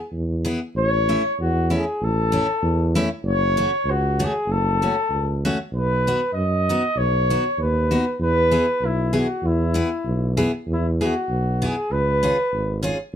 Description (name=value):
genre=alpine folk, alpine dance band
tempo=97 BPM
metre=2/4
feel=swing 55% on 8ths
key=E major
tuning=A4 = 443 Hz
part: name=mellow flugelhorn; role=melody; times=0.0-12.9 s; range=E4 to D#5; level=-22 LUFS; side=left 1 dB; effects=none
part: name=warm tuba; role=bass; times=0.1-13.2 s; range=F#1 to F#2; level=-22 LUFS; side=right 1 dB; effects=none
part: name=picked steel-string acoustic guitar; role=accompaniment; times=0.4-13.0 s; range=A3 to G#4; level=-24 LUFS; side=left 1 dB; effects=none
room=light reverb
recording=dark, warm production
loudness=-19 LUFS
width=side -9 dB against mid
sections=0.8-10.7 A section; 10.7-13.2 B section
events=none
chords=0.0 E; 0.8 A; 3.2 F#m; 5.7 B; 8.2 E; 11.9 C#7